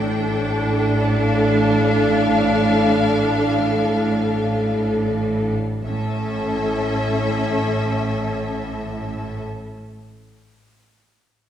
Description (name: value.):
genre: classical, slow romantic movement for string orchestra.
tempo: free time.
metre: none.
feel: none.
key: unclear.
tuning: A4 = 435 Hz.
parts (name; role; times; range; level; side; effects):
warm symphonic violin section; melody; 0.0-9.4 s; E5 to G5; -27 LUFS; left 5 dB; none.
warm studio violin section; second line; 0.0-9.4 s; A4; -24 LUFS; left 1 dB; none.
clear symphonic viola section; accompaniment; 0.0-9.4 s; C#4 to D4; -24 LUFS; right 2 dB; none.
rich symphonic cello section; bass; 0.0-9.4 s; A2; -24 LUFS; right 1 dB; none.
warm symphonic double bass section; bass; 0.0-9.4 s; A1; -26 LUFS; right 1 dB; none.
room: wet scoring stage reverb, RT60 1.5 s.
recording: heard from further back in the room.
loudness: -18 LUFS.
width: side -10 dB against mid.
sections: 0.0-5.8 A section; 5.8-11.5 B section.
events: slowing down 0.0-5.8.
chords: 0.0 Dm/A; 5.8 A.